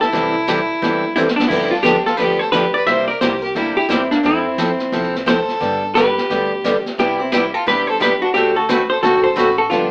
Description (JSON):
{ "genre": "country, western swing", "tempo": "175 BPM", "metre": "4/4", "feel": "swing 62% on 8ths", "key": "C major", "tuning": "A4 = 440 Hz", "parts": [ { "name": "hollow-body jazz guitar", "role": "melody", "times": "0.0-9.9 s", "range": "D4 to E5", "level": "-21 LUFS", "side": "equal", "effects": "none" }, { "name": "clear fiddle", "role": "second line", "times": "0.0-9.9 s", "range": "Bb3 to C5", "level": "-24 LUFS", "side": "equal", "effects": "none" }, { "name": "upright bass", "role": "bass", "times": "0.0-9.9 s", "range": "G1 to G2", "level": "-37 LUFS", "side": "equal", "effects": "none" }, { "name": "jazz brush drum kit", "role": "drums", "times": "0.0-9.9 s", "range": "brushed snare drum, crash cymbal, hi-hat, kick drum, snare drum", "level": "-26 LUFS", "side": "equal", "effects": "none" }, { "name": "picked steel-string acoustic guitar", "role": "accompaniment", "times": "0.1-9.9 s", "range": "C3 to A4", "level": "-22 LUFS", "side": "equal", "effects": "none" } ], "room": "moderate studio reverb, RT60 0.8 s", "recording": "band playing live in one room, AM radio sound", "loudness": "-17 LUFS", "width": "mono", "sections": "0.0-9.9 A section", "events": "drum fill 1.2-1.5", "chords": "0.1 C6; 1.5 G7; 2.9 C7; 4.2 Fmaj7; 5.6 G; 7.0 Cmaj7; 8.3 D7" }